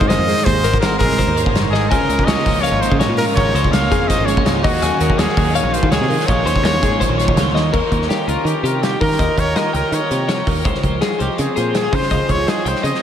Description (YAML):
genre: math rock and midwest emo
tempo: 165 BPM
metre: 4/4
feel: straight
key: unclear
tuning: A4 = 441 Hz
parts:
  - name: clear trumpet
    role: melody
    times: 0.0-13.0 s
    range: F4 to F5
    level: -21 LUFS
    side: equal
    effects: analog delay
  - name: twelve-string electric guitar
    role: accompaniment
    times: 0.0-13.0 s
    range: Ab2 to Gb4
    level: -24 LUFS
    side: right 4 dB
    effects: analog chorus
  - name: twelve-string electric guitar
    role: arpeggios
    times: 0.0-13.0 s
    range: G4 to Ab5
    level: -21 LUFS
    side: left 4 dB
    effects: warbly pitch drift, analog delay
  - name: picked electric bass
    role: bass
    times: 0.0-12.9 s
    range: Gb1 to Eb3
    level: -21 LUFS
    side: equal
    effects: none
  - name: loose indie drum kit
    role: drums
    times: 0.0-13.0 s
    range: crash cymbal, hi-hat, kick drum, snare drum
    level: -20 LUFS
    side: equal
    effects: none
  - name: crunchy overdriven guitar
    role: riff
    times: 1.9-7.7 s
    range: Db3 to Eb4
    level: -25 LUFS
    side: right 1 dB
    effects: ensemble chorus
room: wet huge ambient reverb, RT60 7.8 s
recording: dreamy mix soaked in reverb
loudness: -14 LUFS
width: side -9 dB against mid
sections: 0.0-7.7 A section; 7.7-13.0 B section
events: drum fill 1.7, 7.5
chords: 0.0 Ab7; 1.9 Db6; 4.6 Ebm11; 7.7 Eb9; 10.6 Dbmaj9